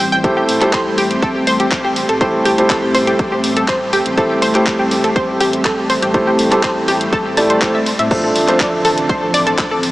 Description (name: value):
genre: progressive house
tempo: 122 BPM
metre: 4/4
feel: straight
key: A minor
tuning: A4 = 440 Hz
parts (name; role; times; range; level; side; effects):
- warm analog pad; sustained chords; 0.0-9.9 s; D3 to C4; -21 LUFS; left 1 dB; chorus, sidechain pumping
- analog pluck; arpeggios; 0.0-9.7 s; G4 to A5; -17 LUFS; equal; wide subtle chorus, sidechain pumping, diffuse ambient delay
- round analog bass; bass; 0.0-9.9 s; E1 to A2; -31 LUFS; equal; sidechain pumping
- house drum kit; drums; 0.0-9.9 s; crash cymbal, handclaps, hi-hat; -21 LUFS; equal; none
- felt-muted upright piano; stabs; 0.2-9.9 s; A3 to D5; -17 LUFS; right 1 dB; sidechain pumping, diffuse ambient delay
- electronic kick drum; drums; 0.2-9.7 s; none; -20 LUFS; equal; none
room: wet huge ambient reverb, RT60 7.6 s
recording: dreamy mix soaked in reverb, small speaker sound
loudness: -12 LUFS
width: side -17 dB against mid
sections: 0.0-9.9 A section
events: filter sweep on analog synth pad 0.0-9.9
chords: 0.2 Am7; 8.1 Dm7/A